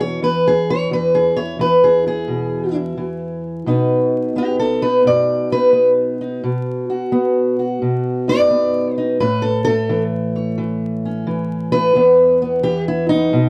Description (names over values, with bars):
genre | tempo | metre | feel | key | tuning
acoustic country blues, solo or duo | 87 BPM | 4/4 | swing 67% on 8ths | E major | A4 = 445 Hz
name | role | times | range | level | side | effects
fingerpicked steel-string acoustic guitar | solo | 0.0-13.5 s | E2 to D5 | -17 LUFS | equal | none
room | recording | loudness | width
little or no reverb | dry, close 1970s-style studio recording, vinyl crackle | -17 LUFS | mono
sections
0.0-13.5 A section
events
steel-string acoustic guitar solo 0.0-13.5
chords
0.0 E; 3.7 B; 9.2 A; 11.9 E5